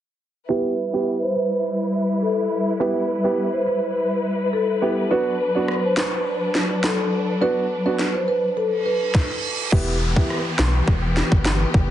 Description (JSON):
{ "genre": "dancehall", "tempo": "104 BPM", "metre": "4/4", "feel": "straight", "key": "E minor", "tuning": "A4 = 440 Hz", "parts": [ { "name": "marimba with medium mallets", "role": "melody", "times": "0.5-9.0 s", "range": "A4 to C5", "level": "-23 LUFS", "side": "right 1 dB", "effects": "low-pass filter, ping-pong delay" }, { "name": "warm baby grand piano", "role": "accompaniment", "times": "0.5-10.4 s", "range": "B3 to G4", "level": "-24 LUFS", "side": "right 2 dB", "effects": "low-pass filter" }, { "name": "warm studio string section", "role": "sustained chords", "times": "0.5-11.9 s", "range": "E3 to B4", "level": "-25 LUFS", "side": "left 1 dB", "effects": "sidechain pumping, low-pass filter" }, { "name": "island pop drum kit", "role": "drums", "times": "5.7-11.9 s", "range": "crash cymbal, handclaps, kick drum, rim click, snare drum", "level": "-21 LUFS", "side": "equal", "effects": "none" }, { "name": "reverse cymbal and downlifter", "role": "sound effects", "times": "8.8-11.9 s", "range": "none", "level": "-29 LUFS", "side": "right 3 dB", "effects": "none" }, { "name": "sub bass with octave", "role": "bass", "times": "9.7-11.9 s", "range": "E1 to B1", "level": "-22 LUFS", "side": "equal", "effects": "none" } ], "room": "light reverb, small room ambience", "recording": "heavily compressed radio sound, multiband compression, nothing above 10.6 kHz", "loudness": "-19 LUFS", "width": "side -11 dB against mid", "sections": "0.5-9.7 A section; 9.7-11.9 B section", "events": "filter sweep 0.5-9.7; reverse cymbal 8.8-9.7; hi-hats muted 9.7-11.9", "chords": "0.5 Em; 5.1 Bm; 9.7 Em", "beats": "| 0.49 1.07 1.65 2.22 | 2.80 3.38 3.95 4.53 | 5.11 5.68 6.26 6.84 | 7.42 7.99 8.57 9.15 | 9.72 10.30 10.88 11.45" }